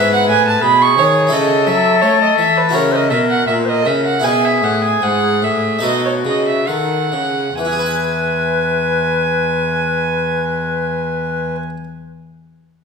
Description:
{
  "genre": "classical, baroque-style sonata movement with continuo",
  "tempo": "65-87 BPM",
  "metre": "4/4",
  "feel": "straight",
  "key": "E major",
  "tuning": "A4 = 440 Hz",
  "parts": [
    { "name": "wooden flute", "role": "melody", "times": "0.0-11.6 s", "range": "F#4 to C5", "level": "-18 LUFS", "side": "left 6 dB", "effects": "none" },
    { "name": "rich violin", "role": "second line", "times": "0.0-11.6 s", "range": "B4 to C#6", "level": "-17 LUFS", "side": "right 4 dB", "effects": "none" },
    { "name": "harpsichord", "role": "accompaniment", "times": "0.0-11.8 s", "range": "G#2 to G#5", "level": "-22 LUFS", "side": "equal", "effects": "none" },
    { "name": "rich cello", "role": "bass", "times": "0.0-11.6 s", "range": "E2 to A3", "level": "-21 LUFS", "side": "right 1 dB", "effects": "none" }
  ],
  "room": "wet recital hall reverb, RT60 1.6 s",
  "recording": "minimal, uncompressed stereo recording",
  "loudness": "-13 LUFS",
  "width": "side -5 dB against mid",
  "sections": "0.0-7.6 A section; 7.6-11.1 B section",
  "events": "slowing down 0.0-7.6",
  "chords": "0.0 E/G#; 1.3 A/C#; 2.7 F#7; 4.2 E; 5.8 B7; 7.6 E"
}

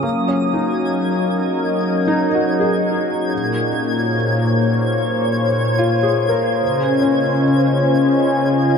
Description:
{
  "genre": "ambient",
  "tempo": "73 BPM",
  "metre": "4/4",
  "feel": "straight",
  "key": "unclear",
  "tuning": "A4 = 436 Hz",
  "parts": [
    { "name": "warm analog pad", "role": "sustained chords", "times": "0.0-8.8 s", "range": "Bb2 to Ab5", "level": "-16 LUFS", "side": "left 1 dB", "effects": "lush chorus" },
    { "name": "felt-muted upright piano", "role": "arpeggios", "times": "0.0-8.8 s", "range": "Bb3 to Bb4", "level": "-22 LUFS", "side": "equal", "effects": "tape echo" },
    { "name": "twinkling granular texture", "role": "texture", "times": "0.0-8.8 s", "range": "Ab6", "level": "-26 LUFS", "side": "equal", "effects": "built-in reverb" }
  ],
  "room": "wet huge ambient reverb, RT60 7.6 s",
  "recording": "dark, warm production",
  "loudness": "-15 LUFS",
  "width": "side -6 dB against mid",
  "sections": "0.0-8.8 A section",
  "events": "none",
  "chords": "0.0 Gb6; 3.3 Bbm7; 6.6 Dbmaj7"
}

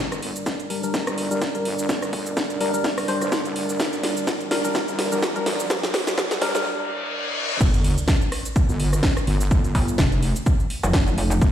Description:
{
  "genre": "bass house",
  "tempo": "126 BPM",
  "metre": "4/4",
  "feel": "swing 56% on 16ths",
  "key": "G minor",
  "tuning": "A4 = 440 Hz",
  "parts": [
    { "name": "dark analog pad", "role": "sustained chords", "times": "0.0-7.6 s", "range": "G3 to D5", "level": "-29 LUFS", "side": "right 2 dB", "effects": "chorus, sidechain pumping" },
    { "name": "wobble bass", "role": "bass", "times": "0.0-11.5 s", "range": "F1 to G1", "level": "-26 LUFS", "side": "equal", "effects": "chorus, sidechain pumping, high-pass filter" },
    { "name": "riser, reverse cymbal and sub drop", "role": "sound effects", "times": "0.0-9.5 s", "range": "none", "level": "-32 LUFS", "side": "left 1 dB", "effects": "none" },
    { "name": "house drum kit", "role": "drums", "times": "0.1-11.5 s", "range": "cabasa, crash cymbal, hi-hat, rim click, snare drum", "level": "-26 LUFS", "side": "equal", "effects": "overdrive" },
    { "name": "electronic kick drum", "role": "drums", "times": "0.5-11.5 s", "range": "none", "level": "-22 LUFS", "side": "equal", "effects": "overdrive, high-pass filter on kick, high-pass filter on room" },
    { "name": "percussive organ stab", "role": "stabs", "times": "0.7-6.7 s", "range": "G3 to C5", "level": "-27 LUFS", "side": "left 3 dB", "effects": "chorus, sidechain pumping, ping-pong delay" },
    { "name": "pulsing pluck wobble bass", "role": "bass", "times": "9.7-11.4 s", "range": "F1 to G1", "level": "-21 LUFS", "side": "equal", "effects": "chorus, overdrive, sidechain pumping" }
  ],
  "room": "light reverb",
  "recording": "played on a big sound system in a bare room, stone room reverb, high-pass filter",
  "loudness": "-20 LUFS",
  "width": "side -10 dB against mid",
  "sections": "0.0-7.6 A section; 7.6-11.5 B section",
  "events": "build-up 0.0-7.6; drum fill 0.0-6.7; riser 0.0-6.7; filter sweep on synth stab 0.0-7.6; break 6.7-7.6; reverse cymbal 6.7-7.6; drop 7.6-11.5; impact 7.6-9.5",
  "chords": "0.0 Gm; 7.6 Fsus2"
}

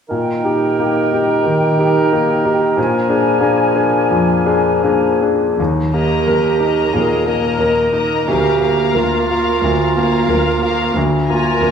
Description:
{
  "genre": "classical, romantic movement for piano and orchestra",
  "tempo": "88 BPM",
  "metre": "4/4",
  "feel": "uneven beats, rubato",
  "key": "Eb major",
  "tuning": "A4 = 442 Hz",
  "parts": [
    { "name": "clear grand piano", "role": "melody", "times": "0.1-11.7 s", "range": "D2 to Bb4", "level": "-16 LUFS", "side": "left 1 dB", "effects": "none" },
    { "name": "bright flute section", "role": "second line", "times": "0.1-5.2 s", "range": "G5 to Ab5", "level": "-21 LUFS", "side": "left 1 dB", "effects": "none" },
    { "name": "mellow cor anglais", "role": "second line", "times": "0.1-5.2 s", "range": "Bb4", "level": "-22 LUFS", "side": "equal", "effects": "none" },
    { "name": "warm clarinet", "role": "second line", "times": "0.1-11.7 s", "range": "D4 to Bb4", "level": "-21 LUFS", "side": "right 3 dB", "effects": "none" },
    { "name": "mellow bassoon", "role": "accompaniment", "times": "0.1-5.2 s", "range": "Eb3 to F3", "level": "-22 LUFS", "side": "equal", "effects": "none" },
    { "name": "warm studio cello section", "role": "bass", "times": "5.6-11.7 s", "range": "D2 to Eb2", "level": "-24 LUFS", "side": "right 1 dB", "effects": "none" },
    { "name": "rich chamber violin section", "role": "second line", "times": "5.9-11.7 s", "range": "Eb5 to Bb5", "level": "-22 LUFS", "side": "left 3 dB", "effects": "none" },
    { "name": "rich studio viola section", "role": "accompaniment", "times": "5.9-11.7 s", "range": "Bb3 to Bb4", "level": "-23 LUFS", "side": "right 2 dB", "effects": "none" }
  ],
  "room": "wet scoring stage reverb, RT60 2.1 s",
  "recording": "heard from further back in the room",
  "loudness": "-13 LUFS",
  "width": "side -7 dB against mid",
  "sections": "0.1-5.6 A section; 5.6-11.7 B section",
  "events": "none",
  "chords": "0.1 Eb/Bb; 2.8 Bb7; 5.6 Eb; 8.3 Bb/D"
}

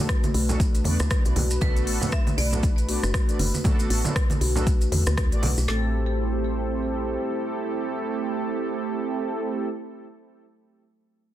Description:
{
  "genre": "afro house",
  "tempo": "118 BPM",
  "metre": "4/4",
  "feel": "swing 58% on 16ths",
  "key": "A dorian",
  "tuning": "A4 = 442 Hz",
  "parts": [
    { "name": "marimba with hard mallets", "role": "melody", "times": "0.0-9.7 s", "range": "A4 to E5", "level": "-35 LUFS", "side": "equal", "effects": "digital delay" },
    { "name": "dark analog pad", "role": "sustained chords", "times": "0.1-9.7 s", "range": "A3 to C5", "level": "-36 LUFS", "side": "left 2 dB", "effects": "chorus, sidechain pumping" },
    { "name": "mellow synth brass", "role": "stabs", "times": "0.0-9.7 s", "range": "A3 to D5", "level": "-30 LUFS", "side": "right 3 dB", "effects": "chorus, sidechain pumping, digital delay" },
    { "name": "kalimba", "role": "arpeggios", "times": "0.1-5.9 s", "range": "F#3 to A4", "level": "-34 LUFS", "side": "left 1 dB", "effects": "sidechain pumping, digital delay" },
    { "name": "deep house drum kit", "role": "drums", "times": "0.1-5.8 s", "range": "kick drum, snare drum", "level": "-23 LUFS", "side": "equal", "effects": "none" },
    { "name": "deep house drum kit", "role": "drums", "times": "0.1-5.5 s", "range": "hi-hat, rim click", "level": "-30 LUFS", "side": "left 1 dB", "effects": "none" },
    { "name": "maracas", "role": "percussion", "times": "0.1-5.7 s", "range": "none", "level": "-36 LUFS", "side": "right 1 dB", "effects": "none" },
    { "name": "congas", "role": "percussion", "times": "0.2-5.5 s", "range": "none", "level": "-30 LUFS", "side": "right 3 dB", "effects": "none" },
    { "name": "woody FM bass", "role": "bass", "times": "0.3-7.2 s", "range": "F#1 to E2", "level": "-25 LUFS", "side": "equal", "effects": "sidechain pumping" }
  ],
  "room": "light reverb, studio reverb",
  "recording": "dense, heavily limited modern master",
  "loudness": "-22 LUFS",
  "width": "side -12 dB against mid",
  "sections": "0.0-5.7 A section; 5.7-9.8 B section",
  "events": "drop 0.0-5.7",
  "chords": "0.0 Bm7; 5.7 Am7"
}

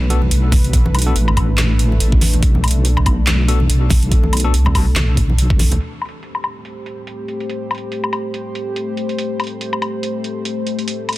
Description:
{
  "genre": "deep dubstep",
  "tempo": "142 BPM",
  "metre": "4/4",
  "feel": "swing 57% on 16ths, half-time",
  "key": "A minor",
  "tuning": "A4 = 440 Hz",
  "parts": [
    { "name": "dark analog pad", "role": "sustained chords", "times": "0.0-11.2 s", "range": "A3 to C5", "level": "-24 LUFS", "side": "left 3 dB", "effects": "chorus" },
    { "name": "deep soft wobble bass", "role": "bass", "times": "0.0-5.8 s", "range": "A1 to C2", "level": "-15 LUFS", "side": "equal", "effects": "chorus" },
    { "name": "bell-like tine electric piano", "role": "stabs", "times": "0.1-4.5 s", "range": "B3 to A4", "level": "-29 LUFS", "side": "left 4 dB", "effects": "medium stereo tremolo, dub echo" },
    { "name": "garage drum kit", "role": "drums", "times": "0.1-11.2 s", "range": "handclaps, hi-hat, snare drum, woodblock", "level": "-22 LUFS", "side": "equal", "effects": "overdrive, low-pass filter on hats, low-pass filter on cymbals, low-pass filter on perc, low-pass filter on snare" },
    { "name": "congas", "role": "percussion", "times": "0.2-5.8 s", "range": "none", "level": "-24 LUFS", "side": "right 1 dB", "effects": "none" },
    { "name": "electronic kick drum", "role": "drums", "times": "0.5-5.6 s", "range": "none", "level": "-15 LUFS", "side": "equal", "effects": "overdrive" }
  ],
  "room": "digital ambience",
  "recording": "dense, heavily limited modern master",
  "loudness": "-14 LUFS",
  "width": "side -17 dB against mid",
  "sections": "0.0-5.8 A section; 5.8-11.2 B section",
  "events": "filter sweep on drum 5.8-11.2",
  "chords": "0.0 Bm7; 5.8 Am7"
}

